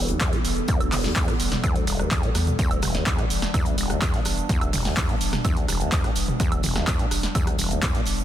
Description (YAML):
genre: acid house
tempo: 126 BPM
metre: 4/4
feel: straight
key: E minor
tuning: A4 = 439 Hz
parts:
  - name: warbly tape-like pad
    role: sustained chords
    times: 0.0-8.2 s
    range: E3 to A4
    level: -30 LUFS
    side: left 1 dB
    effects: chorus, built-in reverb, sidechain pumping
  - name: deep acid bass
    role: riff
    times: 0.0-8.0 s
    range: E1 to B2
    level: -28 LUFS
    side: equal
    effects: overdrive, analog chorus, sidechain pumping, digital delay
  - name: warm sub bass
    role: bass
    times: 0.0-8.2 s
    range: E1 to E2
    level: -28 LUFS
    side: equal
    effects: tube saturation, sidechain pumping
  - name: damped 70s drum kit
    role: drums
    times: 0.1-8.2 s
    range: hi-hat, snare drum, tambourine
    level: -38 LUFS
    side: left 3 dB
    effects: sidechain pumping on hats, high-pass filter on hats, high-pass filter on snare, sidechain pumping on perc, high-pass filter on perc, high-pass filter on room
  - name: punchy analog drum machine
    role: drums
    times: 0.1-8.2 s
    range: handclaps, hi-hat, rim click, shaker, snare drum, toms, woodblock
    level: -27 LUFS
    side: right 1 dB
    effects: none
  - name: electronic kick drum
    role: drums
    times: 0.2-7.9 s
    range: none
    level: -25 LUFS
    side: equal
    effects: none
room: light reverb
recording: dense, heavily limited modern master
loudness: -21 LUFS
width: side -11 dB against mid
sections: 0.0-8.2 A section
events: none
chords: 0.0 Em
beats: 0.21 | 0.68 1.16 1.64 2.11 | 2.59 3.06 3.54 4.02 | 4.49 4.97 5.45 5.92 | 6.40 6.88 7.35 7.83